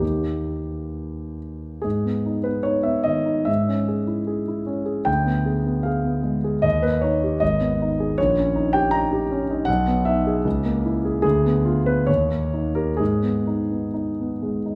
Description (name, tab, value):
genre	classical, romantic character piece for solo piano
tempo	63-81 BPM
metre	2/4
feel	rubato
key	G# minor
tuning	A4 = 440 Hz
part	warm concert grand piano	solo	0.0-14.8 s	G#1 to A#5	-22 LUFS	equal	none
room	moderate recital hall reverb, RT60 1.6 s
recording	none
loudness	-22 LUFS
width	mono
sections	0.0-1.8 A section; 1.8-14.8 B section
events	none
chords	0.0 D#; 1.8 G#m; 3.5 C#m/G#; 5.1 Ddim7; 6.6 D#; 7.4 G#m; 8.2 D#7/A#; 9.7 G#m/B; 10.5 A#m7b5/C#; 11.2 Ddim7; 12.1 D#7; 13.0 G#m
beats	| 0.01 0.94 | 1.85 2.67 | 3.48 4.29 | 5.07 5.87 | 6.65 7.41 | 8.17 8.92 | 9.68 10.45 | 11.24 12.08 | 12.99 13.95